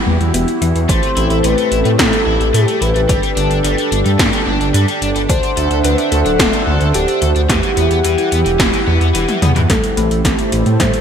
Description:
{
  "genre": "synthwave",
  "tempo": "109 BPM",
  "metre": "4/4",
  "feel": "straight",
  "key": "A dorian",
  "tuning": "A4 = 440 Hz",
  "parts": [
    { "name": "chorused pulse-width pad", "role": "sustained chords", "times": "0.0-11.0 s", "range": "A3 to F#5", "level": "-19 LUFS", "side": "right 2 dB", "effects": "sidechain pumping" },
    { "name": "thumb-piano-like synth pluck", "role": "arpeggios", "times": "0.1-0.7, 9.7-11.0 s", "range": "G3 to E4", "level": "-23 LUFS", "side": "left 4 dB", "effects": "chorus, ping-pong delay" },
    { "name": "wide detuned saw bass", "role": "bass", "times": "0.1-10.9 s", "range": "D1 to A2", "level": "-16 LUFS", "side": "equal", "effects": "chorus, sidechain pumping" },
    { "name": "80s electronic pad drums", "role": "drums", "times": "0.2-11.0 s", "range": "hi-hat, snare drum, toms", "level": "-19 LUFS", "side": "equal", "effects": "gated reverb on snare and toms, gated reverb" },
    { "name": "warm velvety synth lead", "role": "melody", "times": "0.9-11.0 s", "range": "F#4 to C5", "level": "-20 LUFS", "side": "left 2 dB", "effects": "chorus, vintage 12-bit sampler grit, digital delay" },
    { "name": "overdriven electric guitar", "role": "riff", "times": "0.9-11.0 s", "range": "E3 to A4", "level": "-22 LUFS", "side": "left 2 dB", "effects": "analog chorus, low-pass filter, ping-pong delay" },
    { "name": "electronic kick drum", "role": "drums", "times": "0.9-10.9 s", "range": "none", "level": "-19 LUFS", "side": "equal", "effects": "none" }
  ],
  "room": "moderate lush hall reverb, RT60 2.3 s",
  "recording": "bright 1980s-style digital production",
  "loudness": "-12 LUFS",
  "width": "side -8 dB against mid",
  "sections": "0.0-9.7 A section; 9.7-11.0 B section",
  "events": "drum fill 9.3-9.7, 9.7-11.0",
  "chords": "0.0 Emadd9; 0.9 Am7; 3.1 G; 5.3 D7; 7.5 Emadd9; 9.7 Am7",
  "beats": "0.34 | 0.89 1.44 1.99 2.54 | 3.09 3.64 4.19 4.75 | 5.29 5.84 6.40 6.95 | 7.50 8.05 8.60 9.15 | 9.70 10.25 10.80"
}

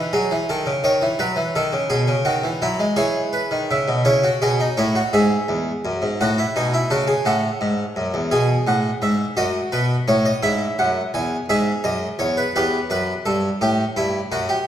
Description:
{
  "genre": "classical, baroque-style 3-part fugue for harpsichord",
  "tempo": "56 BPM (dotted quarters)",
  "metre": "12/8",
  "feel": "straight",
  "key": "unclear",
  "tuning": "A4 = 440 Hz",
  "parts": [
    { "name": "harpsichord", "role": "solo", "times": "0.0-14.7 s", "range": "E2 to A5", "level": "-18 LUFS", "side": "equal", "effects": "none" }
  ],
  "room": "wet recital hall reverb, RT60 1.8 s",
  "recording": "recorded in a church or concert hall",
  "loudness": "-18 LUFS",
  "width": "side -10 dB against mid",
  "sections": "0.0-4.0 A section; 4.0-14.7 B section",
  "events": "none",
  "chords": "0.0 B7 (rootless); 1.9 E/B; 4.0 C#m; 8.3 B; 10.4 E; 12.5 Em",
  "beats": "0.83 1.90 2.97 | 4.05 5.12 6.19 7.26 | 8.32 9.38 10.43 11.49 | 12.54 13.60"
}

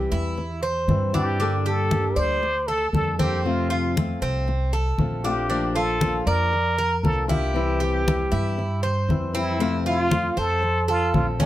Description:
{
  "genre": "latin, Cuban son and guajira",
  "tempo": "117 BPM",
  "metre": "4/4",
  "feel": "straight",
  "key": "F major",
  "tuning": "A4 = 440 Hz",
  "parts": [
    { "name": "flamenco guitar", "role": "accompaniment", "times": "0.0-11.5 s", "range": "C3 to A4", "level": "-28 LUFS", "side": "left 5 dB", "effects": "none" },
    { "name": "Cuban tres", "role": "arpeggios", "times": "0.0-11.5 s", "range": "C4 to D5", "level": "-27 LUFS", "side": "right 2 dB", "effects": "none" },
    { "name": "upright bass", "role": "bass", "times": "0.0-11.5 s", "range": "Bb1 to G2", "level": "-26 LUFS", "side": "right 1 dB", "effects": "none" },
    { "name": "congas", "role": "percussion", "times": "0.1-11.5 s", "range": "none", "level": "-26 LUFS", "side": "left 1 dB", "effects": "none" },
    { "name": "trumpet with plunger mute", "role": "melody", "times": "1.1-11.5 s", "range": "D4 to C5", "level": "-25 LUFS", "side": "equal", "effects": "none" }
  ],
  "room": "light reverb",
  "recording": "close, detailed microphones",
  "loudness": "-20 LUFS",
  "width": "side -14 dB against mid",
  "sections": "0.0-9.6 A section; 9.6-11.5 A section",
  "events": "none",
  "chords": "0.0 C; 1.4 Gmadd9; 3.4 F; 5.5 Bb; 7.6 C; 9.6 F",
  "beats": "0.38 0.89 | 1.40 1.91 2.42 2.94 | 3.45 3.96 4.47 4.99 | 5.50 6.01 6.53 7.04 | 7.55 8.06 8.58 9.09 | 9.60 10.12 10.63 11.14"
}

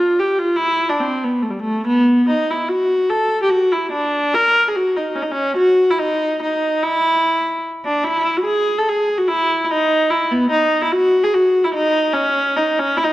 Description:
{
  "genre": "musette",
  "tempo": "145 BPM",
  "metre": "3/4",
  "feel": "straight",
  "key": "unclear",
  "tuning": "A4 = 440 Hz",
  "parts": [
    { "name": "warm viola", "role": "solo", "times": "0.0-13.1 s", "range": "G3 to A#4", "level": "-15 LUFS", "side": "equal", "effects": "none" }
  ],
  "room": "wet recital hall reverb, RT60 1.7 s",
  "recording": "worn, warbling old tape, cassette tape, warbly pitch drift",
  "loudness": "-15 LUFS",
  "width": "side -16 dB against mid",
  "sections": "0.0-8.1 A section; 8.1-13.1 B section",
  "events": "none",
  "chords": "none",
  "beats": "0.19 | 0.60 1.01 1.43 | 1.84 2.26 2.68 | 3.10 3.52 3.93 | 4.35 4.76 5.17 | 5.58 5.99 6.40 | 6.81 7.23 7.65 | 8.06 8.48 8.89 | 9.29 9.70 10.11 | 10.52 10.93 11.34 | 11.75 12.16 12.57 | 12.99"
}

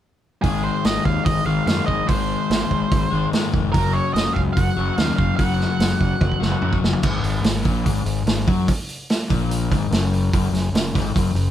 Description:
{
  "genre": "classic rock",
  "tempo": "146 BPM",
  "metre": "4/4",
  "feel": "straight",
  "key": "unclear",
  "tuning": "A4 = 439 Hz",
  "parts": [
    { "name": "octave-fuzz lead guitar", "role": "melody", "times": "0.4-6.8 s", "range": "Ab4 to Gb5", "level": "-25 LUFS", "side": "right 4 dB", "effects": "distortion" },
    { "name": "overdriven semi-hollow guitar", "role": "riff", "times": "0.4-11.5 s", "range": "Gb2 to Ab3", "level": "-22 LUFS", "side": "left 6 dB", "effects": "none" },
    { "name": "fuzz fingered electric bass", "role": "bass", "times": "0.4-11.5 s", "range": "F1 to Ab2", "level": "-24 LUFS", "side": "right 1 dB", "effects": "overdrive" },
    { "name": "vintage drum kit", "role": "drums", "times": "0.4-11.5 s", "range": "crash cymbal, hi-hat, kick drum, snare drum, toms", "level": "-22 LUFS", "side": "right 2 dB", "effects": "none" }
  ],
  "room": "light reverb",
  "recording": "band playing live in one room",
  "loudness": "-18 LUFS",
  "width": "side -11 dB against mid",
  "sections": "0.4-7.0 A section; 7.0-11.5 B section",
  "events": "drum fill 6.2-7.0",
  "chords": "0.4 Ab; 3.7 Gb5; 7.0 Gbadd9; 10.3 Ebmadd11/Gb (rootless)",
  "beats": "| 0.43 0.85 1.26 1.67 | 2.08 2.50 2.91 3.32 | 3.73 4.15 4.56 4.97 | 5.38 5.80 6.21 6.62 | 7.03 7.45 7.86 8.27 | 8.68 9.09 9.51 9.92 | 10.33 10.74 11.15"
}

